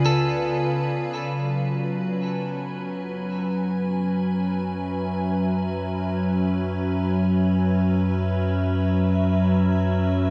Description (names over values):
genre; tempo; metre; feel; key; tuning
ambient; free time; none; none; F# minor; A4 = 440 Hz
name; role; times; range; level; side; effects
evolving wavetable pad; sustained chords; 0.0-10.3 s; C#3 to G#5; -25 LUFS; equal; chorus, built-in reverb
warm sub bass; bass; 0.0-10.3 s; C#2 to F#2; -30 LUFS; equal; none
glass harmonica; texture; 0.0-10.3 s; G#5; -44 LUFS; equal; none
clean electric guitar; arpeggios; 0.1-2.5 s; A4; -34 LUFS; equal; diffuse ambient delay, shimmer reverb
room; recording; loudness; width
wet lush hall reverb, RT60 2.8 s; dreamy mix soaked in reverb, cassette tape; -24 LUFS; mono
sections
0.0-1.3 A section; 1.3-10.3 B section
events
none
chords
0.0 C#7b9b13; 1.3 F#m9